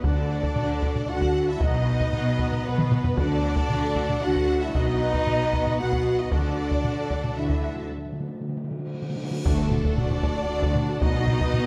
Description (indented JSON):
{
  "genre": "cinematic, epic orchestral film score",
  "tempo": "115 BPM",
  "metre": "3/4",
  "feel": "straight",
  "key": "unclear",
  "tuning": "A4 = 439 Hz",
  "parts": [
    { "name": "rich studio violin section", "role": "melody", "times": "0.0-11.7 s", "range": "A4 to F#5", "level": "-37 LUFS", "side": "equal", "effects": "none" },
    { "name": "warm symphonic violin section", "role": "second line", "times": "0.0-11.7 s", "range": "A4 to A5", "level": "-40 LUFS", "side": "equal", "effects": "none" },
    { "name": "warm symphonic viola section", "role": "accompaniment", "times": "0.0-11.7 s", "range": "D4 to A5", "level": "-40 LUFS", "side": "equal", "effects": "none" },
    { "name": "clear symphonic string section", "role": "sustained chords", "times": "0.0-11.7 s", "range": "B3 to F#5", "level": "-36 LUFS", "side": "equal", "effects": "none" },
    { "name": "mellow French horn section", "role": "sustained chords", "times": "0.0-11.7 s", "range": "A3 to F#4", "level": "-31 LUFS", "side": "equal", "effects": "none" },
    { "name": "rich symphonic cello section", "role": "bass", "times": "0.0-11.7 s", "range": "D2 to D3", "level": "-33 LUFS", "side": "equal", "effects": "none" },
    { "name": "warm studio double bass section", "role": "bass", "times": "0.0-11.7 s", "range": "B1 to D2", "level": "-32 LUFS", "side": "equal", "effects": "none" },
    { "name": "solo taiko drums", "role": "drums", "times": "0.0-11.7 s", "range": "none", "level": "-29 LUFS", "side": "equal", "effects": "none" },
    { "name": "timpani", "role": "percussion", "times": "0.0-0.8, 3.2-3.9, 6.3-10.2 s", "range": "D3", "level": "-36 LUFS", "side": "equal", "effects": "none" },
    { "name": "cymbal swell and impact", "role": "sound effects", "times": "9.1-11.0 s", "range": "none", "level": "-40 LUFS", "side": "equal", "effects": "none" }
  ],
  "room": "moderate scoring stage reverb, RT60 2.0 s",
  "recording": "none",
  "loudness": "-25 LUFS",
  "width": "mono",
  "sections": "0.0-9.5 A section; 9.5-11.7 B section",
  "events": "drum fill 2.8-3.2, 9.1-9.5; timpani fill 6.3-9.5; break 7.9-9.5; cymbal swell 9.1-9.5; impact 9.5-11.0",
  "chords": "0.0 D; 1.6 B; 3.2 D; 4.8 B; 6.3 D; 11.0 B"
}